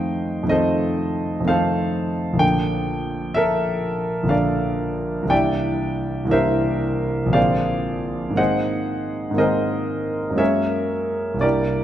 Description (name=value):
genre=classical, impressionist solo piano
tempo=57-65 BPM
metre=3/4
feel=rubato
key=unclear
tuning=A4 = 440 Hz
part: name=warm concert grand piano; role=solo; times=0.0-11.8 s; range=Bb1 to G5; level=-19 LUFS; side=equal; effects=none
room=moderate recital hall reverb, RT60 1.3 s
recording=dark, warm production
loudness=-19 LUFS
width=side -11 dB against mid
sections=0.0-11.8 A section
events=none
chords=0.0 F9; 2.4 Bbmaj7; 5.3 C9; 7.4 Bb9; 8.4 Ab9; 10.4 F#9